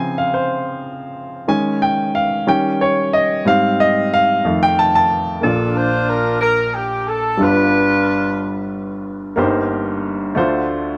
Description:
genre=gospel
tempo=61 BPM (dotted quarters)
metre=6/8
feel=straight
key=Bb major from 5.4 s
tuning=A4 = 440 Hz
part: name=clear baby grand piano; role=accompaniment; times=0.0-11.0 s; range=G1 to C6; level=-18 LUFS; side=equal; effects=none
part: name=warm saxophone section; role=melody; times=5.4-8.7 s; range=D4 to C5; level=-20 LUFS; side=equal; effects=none
room=light reverb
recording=none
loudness=-17 LUFS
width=mono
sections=0.0-5.4 A section; 5.4-11.0 B section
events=grand piano solo 0.0-5.4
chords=0.0 Dbmaj7; 1.5 Eb7sus4; 2.5 Eb7; 3.5 Abmaj7; 4.4 F7; 5.4 Bb; 7.4 G7; 9.4 Cm7/G; 10.4 Dm7

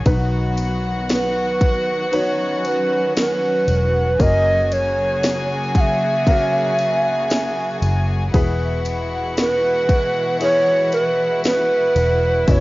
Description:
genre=pop ballad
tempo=58 BPM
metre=4/4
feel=straight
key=unclear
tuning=A4 = 440 Hz
part: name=warm studio violin section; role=second line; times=0.0-12.6 s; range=E4 to G#5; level=-27 LUFS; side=left 2 dB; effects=none
part: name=warm concert grand piano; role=accompaniment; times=0.0-12.6 s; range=B2 to C#5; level=-27 LUFS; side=left 2 dB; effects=none
part: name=dark studio string section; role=sustained chords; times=0.0-12.6 s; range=B2 to F#4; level=-26 LUFS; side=equal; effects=none
part: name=vintage muted fingered electric bass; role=bass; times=0.0-12.6 s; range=E1 to B1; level=-21 LUFS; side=equal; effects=none
part: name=house drum kit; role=drums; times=0.1-12.6 s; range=kick drum, ride cymbal, snare drum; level=-20 LUFS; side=equal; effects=none
part: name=tambourine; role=percussion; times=0.1-12.6 s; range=none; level=-38 LUFS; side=left 4 dB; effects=none
part: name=breathy mellow long shakuhachi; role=melody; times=1.1-12.6 s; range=B4 to F#5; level=-18 LUFS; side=right 1 dB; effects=none
room=light reverb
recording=home recording on cassette, nothing above 7.4 kHz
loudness=-16 LUFS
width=side -19 dB against mid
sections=0.0-12.6 A section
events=none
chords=0.1 B; 4.2 F#; 8.3 E

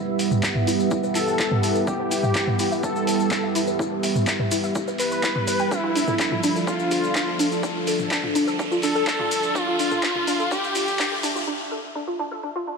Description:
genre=melodic techno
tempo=125 BPM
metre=4/4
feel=straight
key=unclear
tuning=A4 = 440 Hz
part: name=dark analog pad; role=sustained chords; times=0.0-11.4 s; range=F3 to B4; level=-27 LUFS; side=right 2 dB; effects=chorus, sidechain pumping
part: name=riser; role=sound effects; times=0.8-11.5 s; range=none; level=-33 LUFS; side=equal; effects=none
part: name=deep dark ambient pad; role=texture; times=0.0-11.5 s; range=B3 to E5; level=-30 LUFS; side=right 1 dB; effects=chorus, built-in reverb, sidechain pumping
part: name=woody wave-folded pluck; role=arpeggios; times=0.2-12.7 s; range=D4 to B5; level=-28 LUFS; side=left 1 dB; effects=ensemble chorus, sidechain pumping, digital delay
part: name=punchy analog drum machine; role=drums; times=0.2-11.3 s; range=handclaps, hi-hat, toms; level=-26 LUFS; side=equal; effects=none
part: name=maracas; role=percussion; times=0.2-11.5 s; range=none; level=-34 LUFS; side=left 5 dB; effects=none
part: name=electronic kick drum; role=drums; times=0.4-11.1 s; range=none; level=-31 LUFS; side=equal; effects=high-pass filter on kick
part: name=wide unison lead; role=melody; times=1.2-11.1 s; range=E4 to B4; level=-26 LUFS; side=equal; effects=ping-pong delay
room=moderate lush hall reverb, RT60 2.4 s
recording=dark, warm production, high-pass filter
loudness=-20 LUFS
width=side -4 dB against mid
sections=0.0-12.8 A section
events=build-up 0.0-12.8; filter sweep 0.0-12.8; riser 0.8-11.5; break 11.5-12.8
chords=0.0 Em; 5.7 Dmadd9

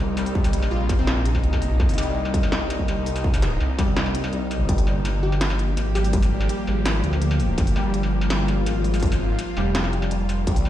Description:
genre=half-time drum and bass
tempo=166 BPM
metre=4/4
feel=half-time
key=G phrygian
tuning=A4 = 439 Hz
part: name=bowed-like drone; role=sustained chords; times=0.0-10.7 s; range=C3 to Bb4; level=-28 LUFS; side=left 2 dB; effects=built-in reverb, vintage 12-bit sampler grit, sidechain pumping
part: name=phased detuned saw bass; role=bass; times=0.0-10.7 s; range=F1 to D2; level=-23 LUFS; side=equal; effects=phaser, tube saturation
part: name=warbly dusty pluck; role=arpeggios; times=0.2-10.7 s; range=G3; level=-30 LUFS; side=left 1 dB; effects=ensemble chorus, ping-pong delay
part: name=industrial drum kit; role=drums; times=0.2-10.7 s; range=hi-hat, snare drum, struck metal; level=-30 LUFS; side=equal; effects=studio reverb
part: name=electronic kick drum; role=drums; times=0.4-10.5 s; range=none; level=-22 LUFS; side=equal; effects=distortion, studio reverb
part: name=plucky unison lead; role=melody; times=0.7-1.3, 5.2-6.2 s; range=C4 to G4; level=-33 LUFS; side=left 1 dB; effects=cassette tape, dub echo
room=light reverb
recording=played on a big sound system in a bare room, stone room reverb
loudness=-20 LUFS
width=side -12 dB against mid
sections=0.0-4.7 A section; 4.7-10.7 A section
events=drop 0.0-4.7, 4.7-10.7; break 4.0-4.7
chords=0.0 Cm7; 4.7 Gm7

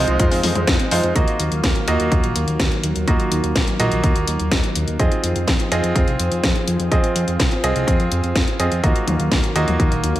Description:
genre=italo disco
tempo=125 BPM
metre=4/4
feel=straight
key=Eb dorian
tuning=A4 = 440 Hz
part: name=analog synth brass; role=melody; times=0.0-0.6 s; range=C5 to Eb5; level=-29 LUFS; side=right 1 dB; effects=chorus, digital delay
part: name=lush unison pad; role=sustained chords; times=0.0-10.2 s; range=Eb3 to F5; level=-25 LUFS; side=equal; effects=chorus
part: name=warbly dusty pluck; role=arpeggios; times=0.0-10.2 s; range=Bb3 to F5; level=-36 LUFS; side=equal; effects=none
part: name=bright grand piano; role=stabs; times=0.0-10.2 s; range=Ab3 to Eb5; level=-22 LUFS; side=right 2 dB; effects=digital delay
part: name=fat analog bass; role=bass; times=0.0-10.2 s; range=Bb1 to F2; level=-23 LUFS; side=equal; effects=none
part: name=house drum kit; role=drums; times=0.1-10.2 s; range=hi-hat, snare drum, toms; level=-23 LUFS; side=left 1 dB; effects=gated reverb
part: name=electronic kick drum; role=drums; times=0.2-9.9 s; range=none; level=-20 LUFS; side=equal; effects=none
room=light reverb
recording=none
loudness=-16 LUFS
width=side -14 dB against mid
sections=0.0-1.2 A section; 1.2-10.2 B section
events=none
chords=0.0 Fm7; 1.2 Ebmadd9; 5.0 Fm7; 8.8 Ebmadd9

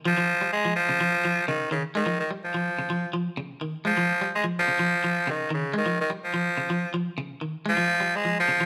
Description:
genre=afrobeat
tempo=126 BPM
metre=4/4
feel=straight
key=unclear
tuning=A4 = 440 Hz
part: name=raspy tenor saxophone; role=melody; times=0.1-8.7 s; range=Db3 to Ab3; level=-26 LUFS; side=equal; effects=none
part: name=clean electric guitar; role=arpeggios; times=0.1-8.7 s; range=Db3 to Ab3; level=-32 LUFS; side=equal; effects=none
room=moderate stone room reverb, RT60 1.2 s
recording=band playing live in one room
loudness=-26 LUFS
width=mono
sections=0.0-8.7 A section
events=none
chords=0.0 Db

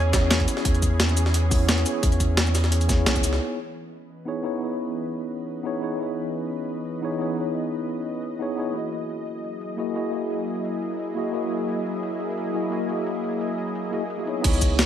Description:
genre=liquid drum and bass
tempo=174 BPM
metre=4/4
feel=straight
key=C# dorian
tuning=A4 = 440 Hz
part: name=soft round pluck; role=melody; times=0.0-3.0 s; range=C#5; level=-33 LUFS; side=right 4 dB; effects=none
part: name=mellow tine electric piano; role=accompaniment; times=0.0-14.9 s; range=A#3 to D#5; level=-27 LUFS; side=equal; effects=medium stereo tremolo, ping-pong delay
part: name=lush unison pad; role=sustained chords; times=0.0-14.9 s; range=E3 to D#6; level=-32 LUFS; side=equal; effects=chorus
part: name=warm sub bass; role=bass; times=0.0-3.4, 14.4-14.9 s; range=B1 to E2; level=-22 LUFS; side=equal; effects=none
part: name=breakbeat sampler-style drum kit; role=drums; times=0.1-14.9 s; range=cabasa, crash cymbal, hi-hat, snare drum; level=-26 LUFS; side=left 1 dB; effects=low-pass filter on hats, low-pass filter on cymbals, low-pass filter on perc, low-pass filter on snare
part: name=electronic kick drum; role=drums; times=0.1-3.2, 14.4-14.7 s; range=none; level=-23 LUFS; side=equal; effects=none
part: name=jungle sampler-style drum kit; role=drums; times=0.1-3.4, 14.4-14.9 s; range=hi-hat, snare drum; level=-29 LUFS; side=right 1 dB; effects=high-pass filter on hats, high-pass filter on snare, high-pass filter on room
room=moderate lush hall reverb, RT60 1.8 s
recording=none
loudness=-23 LUFS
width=side -10 dB against mid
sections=0.0-3.4 A section; 3.4-14.4 B section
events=drop 0.0-3.4; band accent 3.1; filter sweep on analog synth pad 3.4-14.4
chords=0.0 E6; 3.4 C#m9; 8.9 F#13

